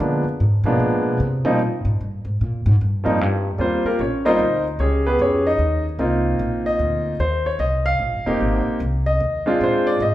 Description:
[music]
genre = jazz piano trio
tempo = 150 BPM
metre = 3/4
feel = swing 65% on 8ths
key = Eb major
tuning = A4 = 440 Hz
[part]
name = clear baby grand piano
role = melody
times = 0.0-10.1 s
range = F3 to F5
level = -19 LUFS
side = equal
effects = none
[part]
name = upright bass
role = bass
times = 0.0-10.1 s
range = Eb1 to D3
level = -22 LUFS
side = equal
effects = none
[sound]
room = wet large studio reverb, RT60 1.3 s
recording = band playing live in one room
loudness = -18 LUFS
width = side -14 dB against mid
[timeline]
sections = 0.0-3.6 A section; 3.6-10.1 B section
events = upright bass solo 0.0-3.6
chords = 0.0 Bb7b9; 1.2 Eb6 (rootless); 3.6 Eb69; 4.8 Db7#11; 6.0 Cm11; 7.2 Ebsus2; 8.4 Abmaj9; 9.6 Bb9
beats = 0.39 0.79 | 1.19 1.59 1.99 | 2.39 2.79 3.19 | 3.59 3.99 4.39 | 4.79 5.19 5.60 | 6.00 6.40 6.80 | 7.20 7.60 8.01 | 8.41 8.81 9.21 | 9.61 10.01

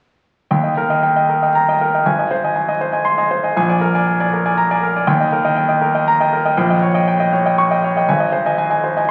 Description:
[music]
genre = classical, virtuoso piano study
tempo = 119 BPM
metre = 3/4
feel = rubato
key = Eb major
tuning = A4 = 440 Hz
[part]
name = clear concert grand piano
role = solo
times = 0.5-9.1 s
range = Ab1 to Db6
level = -16 LUFS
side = equal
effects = none
[sound]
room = wet recital hall reverb, RT60 1.6 s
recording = very old 78 rpm record, vinyl crackle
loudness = -16 LUFS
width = mono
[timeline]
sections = 0.5-9.1 A section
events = none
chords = 0.5 Eb; 2.1 Ab; 3.6 Bb7; 5.1 Eb; 6.6 Eb7/Bb; 8.1 Ab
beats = | 0.51 1.03 1.54 | 2.06 2.56 3.06 | 3.56 4.07 4.58 | 5.08 5.56 6.07 | 6.57 7.06 7.57 | 8.08 8.58 9.09

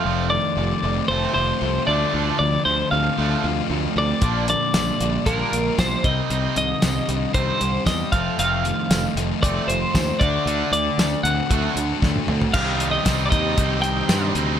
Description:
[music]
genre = indie rock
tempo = 115 BPM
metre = 4/4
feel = straight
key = unclear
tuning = A4 = 440 Hz
[part]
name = twelve-string electric guitar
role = melody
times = 0.0-14.3 s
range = Bb4 to G5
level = -24 LUFS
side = equal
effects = analog delay
[part]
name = distorted electric guitar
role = riff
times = 0.0-14.6 s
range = F3 to F#4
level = -26 LUFS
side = right 11 dB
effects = overdrive, lush chorus, analog delay
[part]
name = sludgy distorted guitar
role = riff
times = 0.0-14.6 s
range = F2 to G4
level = -26 LUFS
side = left 11 dB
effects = overdrive
[part]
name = growling fingered electric bass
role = bass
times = 0.1-14.6 s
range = F1 to G2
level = -25 LUFS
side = equal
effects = overdrive
[part]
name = cloth-damped thuddy drum kit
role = drums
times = 4.2-14.5 s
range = crash cymbal, hi-hat, kick drum, snare drum, tambourine, toms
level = -22 LUFS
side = equal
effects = none
[part]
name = bright tonewheel organ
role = sustained chords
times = 12.5-14.6 s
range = G4 to Eb6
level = -31 LUFS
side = right 2 dB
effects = slow rotary speaker, chorus vibrato
[part]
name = group handclap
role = percussion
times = 13.1-14.2 s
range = none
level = -38 LUFS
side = left 17 dB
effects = none
[sound]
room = light reverb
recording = none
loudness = -18 LUFS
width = side -9 dB against mid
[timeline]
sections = 0.0-12.5 A section; 12.5-14.6 B section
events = drum fill 12.0-12.5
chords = 0.0 F7; 1.9 Dm7; 4.2 Bb6; 6.0 Cmadd9; 8.1 F7; 10.2 D7; 12.5 Cm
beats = | 0.05 0.57 1.10 1.62 | 2.14 2.66 3.18 3.71 | 4.23 4.75 5.27 5.79 | 6.31 6.83 7.35 7.87 | 8.39 8.91 9.43 9.95 | 10.47 10.99 11.51 12.03 | 12.55 13.07 13.59 14.10

